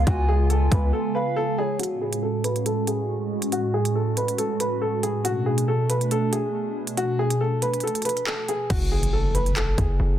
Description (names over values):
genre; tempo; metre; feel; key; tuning
hip hop, drill; 139 BPM; 4/4; half-time; F# harmonic minor; A4 = 437 Hz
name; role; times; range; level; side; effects
warm baby grand piano; melody; 0.0-10.2 s; F#4 to B4; -26 LUFS; left 1 dB; low-pass filter, tape echo
gliding portamento lead; second line; 0.0-1.8 s; C#5 to G#5; -32 LUFS; right 3 dB; chorus, tape echo
hollow soft pad; sustained chords; 0.0-8.7 s; A2 to F#4; -26 LUFS; right 2 dB; ensemble chorus, low-pass filter
distorted 808-style bass; bass; 0.0-0.9, 8.7-10.2 s; E#1 to C#2; -21 LUFS; equal; distortion
drill drum kit; drums; 0.1-9.9 s; crash cymbal, handclaps, hi-hat, kick drum; -27 LUFS; equal; none
impact; sound effects; 8.8-10.2 s; none; -29 LUFS; equal; none
room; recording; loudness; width
light reverb, digital ambience; dense, heavily limited modern master; -21 LUFS; side -11 dB against mid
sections
0.0-1.8 A section; 1.8-8.7 B section; 8.7-10.2 C section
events
break 0.9-1.8; filter sweep 1.8-8.7; impact 8.7-10.2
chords
0.0 C#7; 1.8 F#madd9; 5.2 Bm7; 8.7 F#madd9